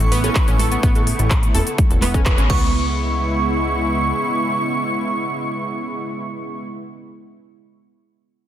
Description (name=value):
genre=progressive house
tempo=126 BPM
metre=4/4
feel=straight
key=C# minor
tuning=A4 = 440 Hz
part: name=glassy synth bell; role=melody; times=0.0-6.6 s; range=C#6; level=-31 LUFS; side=right 3 dB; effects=none
part: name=airy dreamy lead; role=second line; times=0.0-6.6 s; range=C#6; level=-25 LUFS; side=right 1 dB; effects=chorus, sidechain pumping, digital delay
part: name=warm analog pad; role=sustained chords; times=0.0-6.6 s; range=C#3 to E4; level=-25 LUFS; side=right 1 dB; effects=chorus, sidechain pumping
part: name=plucky analog bass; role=bass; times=0.0-4.1 s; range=E1 to C#2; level=-22 LUFS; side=equal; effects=sidechain pumping
part: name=big-room dance drum kit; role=drums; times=0.0-2.6 s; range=crash cymbal, handclaps, hi-hat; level=-26 LUFS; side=left 1 dB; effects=overdrive, sidechain pumping on hats, sidechain pumping on cymbals
part: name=analog pluck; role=arpeggios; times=0.1-2.9 s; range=B3 to B4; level=-26 LUFS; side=right 1 dB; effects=chorus, sidechain pumping, digital delay
part: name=bongos, cowbell and congas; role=percussion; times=0.2-2.6 s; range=none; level=-30 LUFS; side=right 3 dB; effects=sidechain pumping on perc
part: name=electronic kick drum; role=drums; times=0.4-2.6 s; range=none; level=-17 LUFS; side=equal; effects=overdrive
room=light reverb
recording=dense, heavily limited modern master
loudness=-16 LUFS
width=side -11 dB against mid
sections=0.0-2.7 A section; 2.7-6.5 B section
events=drop 0.0-2.7; band accent 2.3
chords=0.0 Aadd9; 2.5 C#m7